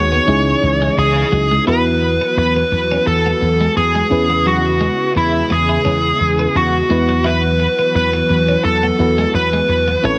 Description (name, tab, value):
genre	pop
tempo	86 BPM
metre	4/4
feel	swing 55% on 16ths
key	C# minor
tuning	A4 = 440 Hz
part	smooth overdriven lead guitar	melody	0.0-10.2 s	E4 to C#5	-18 LUFS	equal	tape echo
part	FM electric piano	accompaniment	0.0-10.2 s	B3 to B4	-24 LUFS	equal	none
part	string machine, violas	sustained chords	0.0-10.2 s	C#3 to D#5	-26 LUFS	equal	ensemble chorus
part	twelve-string electric guitar	riff	0.0-10.2 s	F#3 to E4	-27 LUFS	equal	lush chorus
part	slap bass	bass	0.0-10.2 s	A1 to E2	-21 LUFS	equal	none
room	light reverb, digital ambience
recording	none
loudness	-15 LUFS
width	mono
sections	0.0-1.7 A section; 1.7-10.2 B section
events	none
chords	0.3 C#madd9; 1.7 C#m7/E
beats	0.27 0.97 | 1.67 2.37 3.06 3.76 | 4.46 5.16 5.86 6.55 | 7.25 7.95 8.65 9.34 | 10.04